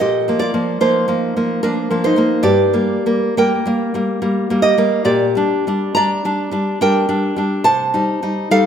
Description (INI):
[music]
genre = romantic piece for solo classical guitar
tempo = 62-75 BPM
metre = 3/4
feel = rubato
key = G minor from 5.1 s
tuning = A4 = 439 Hz
[part]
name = nylon-string guitar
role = solo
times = 0.0-8.7 s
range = G2 to Bb5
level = -14 LUFS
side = equal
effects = none
[sound]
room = light reverb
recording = minimal, uncompressed stereo recording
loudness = -14 LUFS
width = side -8 dB against mid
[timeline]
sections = 0.0-8.7 A section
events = none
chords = 0.0 Bb; 2.5 Gm; 5.1 Gm/Bb; 7.7 Am7b5/C